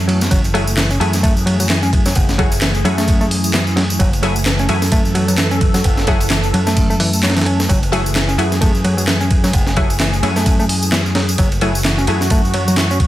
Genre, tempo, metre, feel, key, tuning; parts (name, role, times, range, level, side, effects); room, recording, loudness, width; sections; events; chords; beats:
breakbeat, breaks; 130 BPM; 4/4; swing 58% on 16ths; F# minor; A4 = 440 Hz
phased analog pad; sustained chords; 0.0-13.1 s; E3 to A4; -24 LUFS; equal; phaser, chorus, vintage 12-bit sampler grit, sidechain pumping
orchestra-hit-like synth stab; stabs; 0.0-12.2 s; A3 to G#4; -22 LUFS; left 2 dB; built-in reverb, dub echo
picked electric bass; bass; 0.0-13.1 s; F#1 to F#2; -18 LUFS; equal
picked electric bass; riff; 0.1-13.0 s; E3 to C#4; -21 LUFS; equal; overdrive, dub echo
breakbeat sampler-style drum kit; drums; 0.1-13.1 s; hi-hat, kick drum, ride cymbal, snare drum; -17 LUFS; equal; small room ambience
electronic tambourine and handclaps; drums; 0.2-13.0 s; -23 LUFS; equal; overdrive, small room ambience
light reverb; dense, heavily limited modern master; -13 LUFS; side -14 dB against mid
0.0-13.1 A section
0.0 F#m9
| 0.31 0.77 1.23 1.69 | 2.15 2.62 3.08 3.54 | 4.00 4.46 4.92 5.38 | 5.85 6.31 6.77 7.23 | 7.69 8.15 8.62 9.08 | 9.54 10.00 10.46 10.92 | 11.38 11.85 12.31 12.77